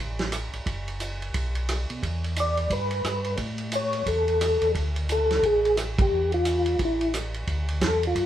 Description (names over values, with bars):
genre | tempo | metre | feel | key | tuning
soul jazz organ trio | 176 BPM | 4/4 | swing 62% on 8ths | unclear | A4 = 442 Hz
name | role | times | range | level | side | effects
mellow tonewheel organ | bass | 0.0-8.3 s | F#1 to B2 | -29 LUFS | equal | overdrive, chorus vibrato, slow rotary speaker
warm soul drum kit | drums | 0.2-8.3 s | hi-hat, kick drum, ride cymbal, rim click, snare drum | -30 LUFS | right 2 dB | none
percussive tonewheel organ | melody | 2.4-8.3 s | E4 to D5 | -23 LUFS | left 1 dB | slow rotary speaker, chorus vibrato
room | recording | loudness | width
moderate studio reverb, RT60 0.6 s | band playing live in one room | -23 LUFS | side -11 dB against mid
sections
0.0-7.5 A section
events
band accent 5.9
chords
0.0 N.C.; 2.0 Em7; 3.4 A; 4.8 D5; 6.1 Em; 6.8 A5; 7.5 Dadd9